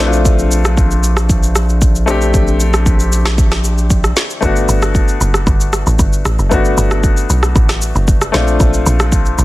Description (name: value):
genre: amapiano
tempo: 115 BPM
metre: 4/4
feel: straight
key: unclear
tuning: A4 = 440 Hz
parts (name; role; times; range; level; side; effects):
- clear baby grand piano; accompaniment; 0.0-9.4 s; A3 to B4; -18 LUFS; left 4 dB; none
- saturated sub bass; bass; 0.0-4.1 s; Bb1; -14 LUFS; equal; none
- deep house drum kit; drums; 0.0-9.4 s; kick drum, rim click, shaker, snare drum; -14 LUFS; equal; soft clipping on snare
- woody log drum bass; bass; 4.4-9.4 s; F#1 to B1; -14 LUFS; equal; none
room: little or no reverb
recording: dense, heavily limited modern master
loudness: -10 LUFS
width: side -18 dB against mid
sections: 0.0-9.4 A section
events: none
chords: 0.0 Bbmaj9; 4.4 Gmaj9; 8.3 Bbmaj9